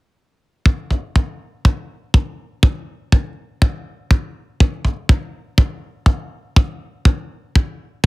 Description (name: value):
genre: nu-disco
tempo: 122 BPM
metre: 4/4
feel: swing 55% on 16ths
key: none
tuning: none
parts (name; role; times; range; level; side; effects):
- kick drum; drums; 0.7-8.1 s; none; -12 LUFS; equal; none
room: little or no reverb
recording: heavily compressed radio sound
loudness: -16 LUFS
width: side -23 dB against mid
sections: 0.7-8.1 A section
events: none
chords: none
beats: | 0.66 1.16 1.65 2.14 | 2.63 3.12 3.62 4.11 | 4.60 5.09 5.58 6.07 | 6.57 7.06 7.55 8.04